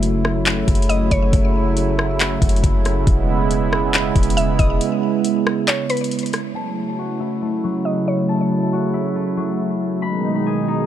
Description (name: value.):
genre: hip hop, atmospheric cloud-rap.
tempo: 138 BPM.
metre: 4/4.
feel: half-time.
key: F# dorian.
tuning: A4 = 440 Hz.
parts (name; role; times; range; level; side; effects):
warm analog pad; sustained chords; 0.0-10.9 s; B2 to E4; -20 LUFS; right 3 dB; chorus, sidechain pumping, low-pass filter.
soft 808-style bass; bass; 0.0-4.8 s; E1 to F#1; -21 LUFS; equal; none.
smooth R&B drum kit; drums; 0.0-6.4 s; handclaps, hi-hat, kick drum, rim click; -19 LUFS; equal; vintage 12-bit sampler grit.
mallet-like synth pluck; melody; 0.9-1.3, 4.4-8.3 s; B4 to E5; -26 LUFS; left 1 dB; chorus, low-pass filter, ping-pong delay.
concert harp; arpeggios; 6.5-10.9 s; F#3 to B5; -24 LUFS; left 8 dB; low-pass filter, ping-pong delay.
room: light reverb, digital ambience.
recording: none.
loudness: -16 LUFS.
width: side -11 dB against mid.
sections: 0.0-6.5 A section; 6.5-10.9 B section.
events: break 4.8-6.5.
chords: 0.0 F#m7; 3.1 E6; 6.5 F#m7; 10.0 G#m.